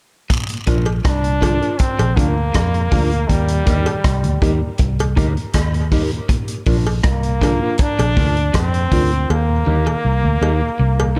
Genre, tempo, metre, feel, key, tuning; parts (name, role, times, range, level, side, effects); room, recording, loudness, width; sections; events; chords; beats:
dub reggae; 80 BPM; 4/4; straight; Bb major; A4 = 440 Hz
clean electric guitar; arpeggios; 0.3-11.2 s; Bb2 to Eb3; -33 LUFS; equal
vintage drum kit; drums; 0.3-9.3 s; hi-hat, kick drum, rim click; -22 LUFS; equal
jawbone-type rattle and cowbell; percussion; 0.3-11.2 s; -29 LUFS; equal; tape echo
mellow tonewheel organ; accompaniment; 0.5-11.2 s; Eb2 to Eb4; -31 LUFS; equal
mellow electric guitar; accompaniment; 0.7-11.2 s; D4 to Bb4; -28 LUFS; equal; phaser, tape echo
vintage muted fingered electric bass; bass; 0.7-11.2 s; Bb1 to F2; -20 LUFS; equal
brilliant trombone; melody; 1.1-11.2 s; G3 to D4; -24 LUFS; equal; tape echo
light reverb; dark, warm production; -17 LUFS; mono
0.3-11.2 A section
part muted 9.3-11.2
0.3 Bb; 3.3 Eb; 6.3 Bb; 9.3 Eb
| 0.30 1.05 1.80 2.55 | 3.30 4.05 4.80 5.55 | 6.29 7.04 7.79 8.54 | 9.29 10.04 10.79